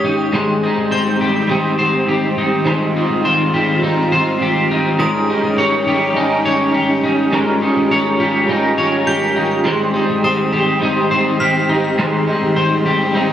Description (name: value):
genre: dream pop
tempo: 103 BPM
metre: 4/4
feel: straight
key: Ab major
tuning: A4 = 443 Hz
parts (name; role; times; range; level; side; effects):
- soft string machine; sustained chords; 0.0-13.3 s; Eb3 to G4; -19 LUFS; right 1 dB; ensemble chorus, plate reverb
- electric guitar at the edge of break-up; arpeggios; 0.0-13.3 s; Ab3 to Db5; -16 LUFS; left 2 dB; lush chorus, ping-pong delay, plate reverb
- vintage muted picked electric bass; bass; 0.0-13.3 s; Ab1; -29 LUFS; equal; none
- glassy synth bell; texture; 0.0-13.2 s; Db6 to G6; -28 LUFS; right 1 dB; chorus, phaser, ping-pong delay, plate reverb
- clean electric guitar; accompaniment; 0.3-13.3 s; Ab2 to C5; -21 LUFS; right 3 dB; tremolo, lush chorus, plate reverb
room: moderate studio reverb, RT60 0.7 s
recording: recorded on a phone in the room, studio reverb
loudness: -13 LUFS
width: side -10 dB against mid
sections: 0.3-13.3 A section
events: none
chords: 0.3 Abmaj7; 5.0 Eb7/Ab; 9.7 Abmaj7